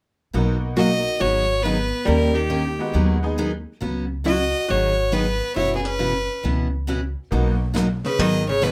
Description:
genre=country, western swing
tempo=138 BPM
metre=4/4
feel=swing 66% on 8ths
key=B major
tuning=A4 = 438 Hz
part: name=picked steel-string acoustic guitar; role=accompaniment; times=0.3-8.7 s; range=B2 to A#4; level=-26 LUFS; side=equal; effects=none
part: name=tack piano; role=accompaniment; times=0.3-3.4, 7.3-7.6 s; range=G#3 to G#4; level=-31 LUFS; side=equal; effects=none
part: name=upright bass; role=bass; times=0.3-8.7 s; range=F#1 to D#2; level=-27 LUFS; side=equal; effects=none
part: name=clear fiddle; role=melody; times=0.8-8.7 s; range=G4 to D#5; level=-25 LUFS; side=equal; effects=none
part: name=archtop guitar, miked and amplified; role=second line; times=0.8-8.7 s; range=B2 to F#4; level=-29 LUFS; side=equal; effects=none
part: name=vintage brush drum kit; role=drums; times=7.3-8.7 s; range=brushed snare drum, hi-hat, kick drum, snare drum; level=-31 LUFS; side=equal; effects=none
room=wet club reverb, RT60 0.5 s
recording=none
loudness=-22 LUFS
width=mono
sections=0.3-7.3 A section; 7.3-8.7 B section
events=none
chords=0.3 Bmaj7; 1.2 G#m7; 2.1 D#7; 3.0 G#m7/D#; 3.8 C#7sus4; 4.7 G#m7; 5.6 F#7sus4; 7.3 Bmaj7; 8.2 G#m7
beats=| 0.34 0.78 1.21 1.65 | 2.08 2.52 2.96 3.39 | 3.83 4.26 4.70 5.13 | 5.57 6.01 6.44 6.88 | 7.31 7.75 8.19 8.62

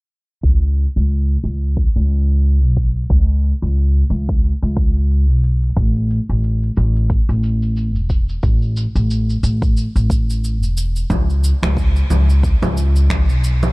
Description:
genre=organic downtempo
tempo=90 BPM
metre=4/4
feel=swing 57% on 16ths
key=unclear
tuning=A4 = 440 Hz
part: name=upright bass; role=bass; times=0.4-13.7 s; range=E1 to C#2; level=-15 LUFS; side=equal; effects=none
part: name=electronic kick drum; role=drums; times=0.4-13.3 s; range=none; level=-17 LUFS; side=equal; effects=none
part: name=electronic shaker, congas and finger snaps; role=drums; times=0.4-13.7 s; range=none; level=-24 LUFS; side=equal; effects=none
room=little or no reverb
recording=dark, warm production, low-pass filter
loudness=-14 LUFS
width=side -25 dB against mid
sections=0.4-11.1 A section; 11.1-13.7 B section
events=filter sweep on upright bass 0.4-11.1; filter sweep 0.4-11.1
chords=none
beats=| 0.44 1.10 1.77 2.44 | 3.10 3.77 4.44 5.10 | 5.77 6.44 7.10 7.77 | 8.44 9.10 9.77 10.44 | 11.10 11.77 12.44 13.10

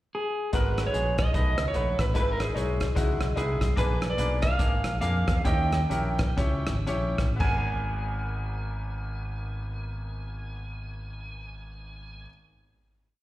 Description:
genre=uptempo gospel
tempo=110-148 BPM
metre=4/4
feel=swing 61% on 8ths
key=G# minor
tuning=A4 = 443 Hz
part: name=clean lap steel guitar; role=melody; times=0.1-12.3 s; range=G#4 to G#5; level=-32 LUFS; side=right 2 dB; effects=slapback echo
part: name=bright grand piano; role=accompaniment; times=0.5-12.3 s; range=G#1 to F#5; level=-34 LUFS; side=left 2 dB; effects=slapback echo
part: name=fingered electric bass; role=bass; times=0.5-12.3 s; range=G#1 to E#2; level=-29 LUFS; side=equal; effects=none
part: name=warm soul drum kit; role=drums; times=0.5-7.6 s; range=crash cymbal, hi-hat, kick drum, rim click, toms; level=-28 LUFS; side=equal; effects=none
room=little or no reverb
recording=live gig heard through the venue's PA, recital hall reverb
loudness=-25 LUFS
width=side -15 dB against mid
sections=0.0-0.5 pickup bar; 0.5-7.4 breakdown; 7.4-11.7 final chord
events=slowing down 3.8-7.4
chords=0.0 N.C.; 0.5 G#m9; 1.3 B7; 2.2 Emaj7/G#; 3.8 A#7b9; 5.5 D#7b9; 7.4 G#m9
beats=0.13 | 0.53 0.94 1.34 1.75 | 2.15 2.56 2.96 3.37 | 3.77 4.18 4.59 5.02 | 5.45 5.90 6.38 6.87 | 7.40 7.94 8.49 9.03 | 9.57 10.12 10.66 11.21

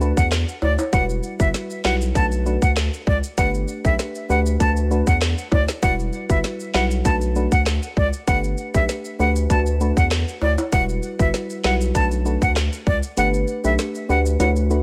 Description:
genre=dancehall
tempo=98 BPM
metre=4/4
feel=straight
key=unclear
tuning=A4 = 441 Hz
part: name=soft round pluck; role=accompaniment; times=0.0-14.8 s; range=G3 to B4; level=-27 LUFS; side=equal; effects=chorus
part: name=saturated sub bass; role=bass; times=0.0-14.8 s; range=E1 to E2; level=-24 LUFS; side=equal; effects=none
part: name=maracas and timbales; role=percussion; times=0.0-14.8 s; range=none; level=-34 LUFS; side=equal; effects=none
part: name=breathy bright jazz flute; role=melody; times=0.2-14.5 s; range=D5 to A5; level=-27 LUFS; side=equal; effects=tape echo
part: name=island pop drum kit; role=drums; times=0.2-14.6 s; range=handclaps, hi-hat, kick drum, rim click, snare drum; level=-23 LUFS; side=equal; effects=overdrive, vintage 12-bit sampler grit
room=digital ambience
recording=none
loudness=-20 LUFS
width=mono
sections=0.0-14.8 A section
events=kick muted 13.2-14.8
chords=0.0 D6; 0.9 Emadd9; 2.2 Bm7; 3.4 Gadd9; 4.6 D6; 5.8 Emadd9; 7.1 Bm7; 8.3 Gadd9; 9.5 D6; 10.7 Emadd9; 11.9 Bm7; 13.2 Gadd9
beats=0.32 | 0.93 1.54 2.15 2.77 | 3.38 3.99 4.60 5.21 | 5.83 6.44 7.05 7.66 | 8.28 8.89 9.50 10.11 | 10.72 11.34 11.95 12.56 | 13.17 13.79 14.40

